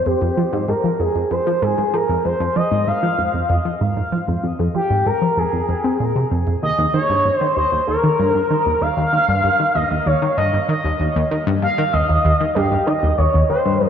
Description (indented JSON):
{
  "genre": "ambient, sequencer-driven space music",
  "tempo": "96 BPM",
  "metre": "4/4",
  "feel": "straight",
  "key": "F minor",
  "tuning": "A4 = 439 Hz",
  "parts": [
    { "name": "expressive synth lead", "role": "melody", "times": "0.0-13.9 s", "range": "G4 to F5", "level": "-18 LUFS", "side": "equal", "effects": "lush chorus, tape echo" },
    { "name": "tight sequenced synth", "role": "riff", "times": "0.1-13.9 s", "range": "Eb2 to C4", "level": "-19 LUFS", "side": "equal", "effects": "chorus, phaser, tape echo" }
  ],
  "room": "wet lush hall reverb, RT60 3.0 s",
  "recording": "dreamy mix soaked in reverb",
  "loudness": "-16 LUFS",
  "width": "side -8 dB against mid",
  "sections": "0.0-13.9 A section",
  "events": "none",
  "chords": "0.0 Fmadd9; 6.6 Eb"
}